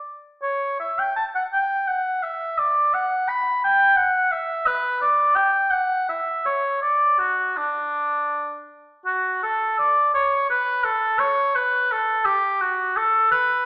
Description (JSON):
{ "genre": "classical, baroque-style fantasia for unaccompanied oboe", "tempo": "78-89 BPM", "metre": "3/4", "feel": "rubato", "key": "D major", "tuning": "A4 = 440 Hz", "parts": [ { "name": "warm oboe", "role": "solo", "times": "0.0-13.7 s", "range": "D4 to B5", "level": "-19 LUFS", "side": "equal", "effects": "none" } ], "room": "wet recital hall reverb, RT60 1.3 s", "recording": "heard from further back in the room, AM radio sound", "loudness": "-19 LUFS", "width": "side -22 dB against mid", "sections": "0.0-9.1 A section; 9.1-13.7 B section", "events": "none", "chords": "none" }